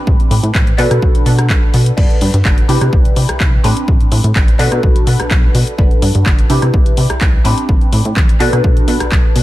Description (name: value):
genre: filtered disco house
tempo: 126 BPM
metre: 4/4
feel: straight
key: unclear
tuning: A4 = 440 Hz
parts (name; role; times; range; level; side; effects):
- funky polysynth comp; accompaniment; 0.0-9.4 s; C4 to B4; -19 LUFS; equal; chorus, phaser, sidechain pumping, dub echo
- plucky analog bass; bass; 0.1-9.4 s; G1 to C3; -14 LUFS; equal; sidechain pumping
- electronic kick drum; drums; 0.1-9.2 s; none; -12 LUFS; equal; none
- house drum kit; drums; 0.2-9.4 s; crash cymbal, handclaps, hi-hat, rim click; -21 LUFS; left 1 dB; sidechain pumping on hats, sidechain pumping on cymbals
room: little or no reverb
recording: echo-heavy mix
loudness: -10 LUFS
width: side -16 dB against mid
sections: 0.0-9.4 A section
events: none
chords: 0.0 Am11; 0.8 Bm7; 2.0 Gmaj9; 2.7 Cmaj9; 3.6 Am11; 4.6 Bm7; 5.8 Gmaj9; 6.5 Cmaj9; 7.5 Am11; 8.4 Bm7